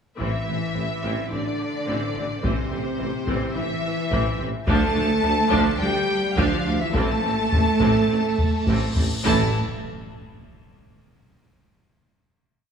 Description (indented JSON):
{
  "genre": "cinematic, epic orchestral film score",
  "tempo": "106 BPM",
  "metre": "4/4",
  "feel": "straight",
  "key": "A minor",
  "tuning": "A4 = 440 Hz",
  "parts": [
    { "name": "warm symphonic violin section", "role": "melody", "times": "0.2-9.6 s", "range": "C5 to A5", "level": "-32 LUFS", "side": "left 4 dB", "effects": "none" },
    { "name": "warm symphonic violin section", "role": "second line", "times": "0.2-9.6 s", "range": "C5 to A5", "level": "-30 LUFS", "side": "left 3 dB", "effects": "none" },
    { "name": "clear symphonic viola section", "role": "accompaniment", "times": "0.2-9.6 s", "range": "E3 to E4", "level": "-29 LUFS", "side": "right 1 dB", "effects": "none" },
    { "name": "mellow trombone section", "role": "sustained chords", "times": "0.2-9.5 s", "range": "C3 to A3", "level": "-30 LUFS", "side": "right 2 dB", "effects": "none" },
    { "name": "warm French horn section", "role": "sustained chords", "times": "0.2-9.5 s", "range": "C4 to A4", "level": "-31 LUFS", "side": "left 3 dB", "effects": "none" },
    { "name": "rich studio cello section", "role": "bass", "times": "0.2-9.6 s", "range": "C3 to A3", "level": "-28 LUFS", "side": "right 4 dB", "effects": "none" },
    { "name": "rich symphonic double bass section", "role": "bass", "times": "0.2-9.6 s", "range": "A1 to D2", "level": "-30 LUFS", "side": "right 2 dB", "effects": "none" },
    { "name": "warm tuba", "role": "bass", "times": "0.2-9.5 s", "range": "A1 to D2", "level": "-30 LUFS", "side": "right 3 dB", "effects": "none" },
    { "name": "solo taiko drums", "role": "drums", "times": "0.2-9.2 s", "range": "none", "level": "-26 LUFS", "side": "left 1 dB", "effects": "none" },
    { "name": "cymbal swell and impact", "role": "sound effects", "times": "8.4-11.6 s", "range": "none", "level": "-34 LUFS", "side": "left 3 dB", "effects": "none" }
  ],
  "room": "moderate concert hall reverb, RT60 2.0 s",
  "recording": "small room ambience",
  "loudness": "-20 LUFS",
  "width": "side -7 dB against mid",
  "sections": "0.2-9.3 theme; 9.3-11.6 final chord",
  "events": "cymbal swell 8.4-9.3; impact 9.3-11.6",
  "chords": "0.2 Am; 4.7 Dm; 6.9 Am; 9.3 A5"
}